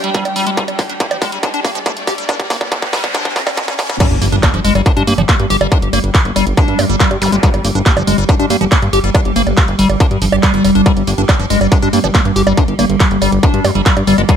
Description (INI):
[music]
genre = psychedelic trance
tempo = 140 BPM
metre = 4/4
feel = straight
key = G minor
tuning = A4 = 435 Hz
[part]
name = evolving wavetable pad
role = sustained chords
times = 0.0-14.4 s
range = G3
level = -20 LUFS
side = right 1 dB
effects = ensemble chorus, built-in reverb, phaser, sidechain pumping
[part]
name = liquid acid bass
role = riff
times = 0.0-14.4 s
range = F3 to G4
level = -18 LUFS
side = moving between left 4 dB and right 2 dB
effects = phaser, auto-pan, sidechain pumping, tape echo
[part]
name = techno drum kit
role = drums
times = 0.0-14.4 s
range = bongos, crash cymbal, handclaps, hi-hat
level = -19 LUFS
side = right 2 dB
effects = overdrive, high-pass filter on hats, studio reverb, high-pass filter on perc, high-pass filter on cymbals, high-pass filter on snare
[part]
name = riser, noise sweep, impact and zap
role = sound effects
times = 0.0-7.3 s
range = none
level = -23 LUFS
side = equal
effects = none
[part]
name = dark studio string section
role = texture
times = 0.0-4.0 s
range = D4 to G5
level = -26 LUFS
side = right 1 dB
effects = sidechain pumping
[part]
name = electronic kick drum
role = drums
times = 0.1-14.4 s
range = none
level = -13 LUFS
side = equal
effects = distortion, overdrive, studio reverb
[part]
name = fat analog bass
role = bass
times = 4.1-14.2 s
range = F1 to G2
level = -16 LUFS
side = equal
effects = none
[sound]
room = little or no reverb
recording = high-pass filter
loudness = -11 LUFS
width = side -8 dB against mid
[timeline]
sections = 0.0-4.0 A section; 4.0-14.4 B section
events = build-up 0.0-4.0; drum fill 0.0-4.0; riser 0.0-4.0; noise sweep 2.3-4.0; drop 4.0-14.4; impact 4.0-5.7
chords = 0.0 G5